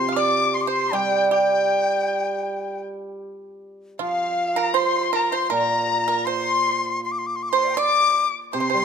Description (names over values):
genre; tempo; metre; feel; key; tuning
chinese traditional, Chinese chamber ensemble; 79 BPM; 4/4; rubato; C shang mode; A4 = 441 Hz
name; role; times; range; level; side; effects
bright reedy large dizi; melody; 0.0-8.8 s; F5 to D6; -23 LUFS; left 4 dB; none
dark erhu; second line; 0.0-8.8 s; C5 to F6; -26 LUFS; left 5 dB; none
pipa; second line; 0.0-8.8 s; F4 to F5; -25 LUFS; right 10 dB; none
hammered dulcimer; accompaniment; 0.0-8.8 s; Bb2 to G3; -25 LUFS; right 3 dB; none
room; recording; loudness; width
moderate recital hall reverb, RT60 1.7 s; close, detailed microphones; -19 LUFS; side -7 dB against mid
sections
0.0-8.8 A section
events
none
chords
none